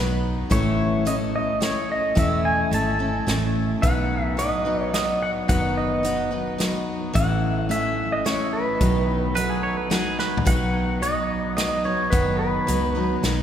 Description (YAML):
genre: honky-tonk and classic country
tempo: 108 BPM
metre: 3/4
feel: straight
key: B mixolydian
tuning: A4 = 438 Hz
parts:
  - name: pedal steel guitar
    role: melody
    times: 0.0-13.4 s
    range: B4 to A5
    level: -25 LUFS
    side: right 1 dB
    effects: none
  - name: picked steel-string acoustic guitar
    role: accompaniment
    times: 0.0-13.4 s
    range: A2 to B4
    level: -25 LUFS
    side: left 1 dB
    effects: none
  - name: vintage muted fingered electric bass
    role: bass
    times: 0.0-13.4 s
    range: E1 to C#2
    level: -28 LUFS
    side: right 1 dB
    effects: none
  - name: natural country drum kit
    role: drums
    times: 0.5-13.4 s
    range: hi-hat, kick drum, snare drum, toms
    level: -27 LUFS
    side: equal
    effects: none
  - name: twangy electric guitar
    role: second line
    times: 9.4-10.5 s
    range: G#4 to C#5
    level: -30 LUFS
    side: right 3 dB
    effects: none
room: wet cathedral reverb, RT60 6.2 s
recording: recorded in a church or concert hall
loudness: -20 LUFS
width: side -9 dB against mid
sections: 0.0-10.5 A section; 10.5-13.4 A section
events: drum fill 10.2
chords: 0.0 B; 0.5 A; 3.8 B; 7.2 A; 8.8 B